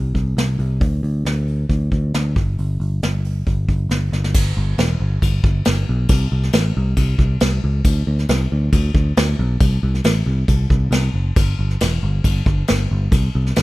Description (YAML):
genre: folk rock and heartland rock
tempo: 137 BPM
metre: 4/4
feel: straight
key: unclear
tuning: A4 = 438 Hz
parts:
  - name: picked electric bass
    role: bass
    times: 0.0-13.6 s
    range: E1 to D2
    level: -18 LUFS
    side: equal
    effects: none
  - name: soft brush drum kit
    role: drums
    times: 0.1-13.6 s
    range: crash cymbal, hi-hat, kick drum, snare drum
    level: -19 LUFS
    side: equal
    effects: none
room: little or no reverb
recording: rough home demo mix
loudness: -16 LUFS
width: side -19 dB against mid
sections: 0.0-4.4 A section; 4.4-13.6 B section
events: drum fill 4.1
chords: none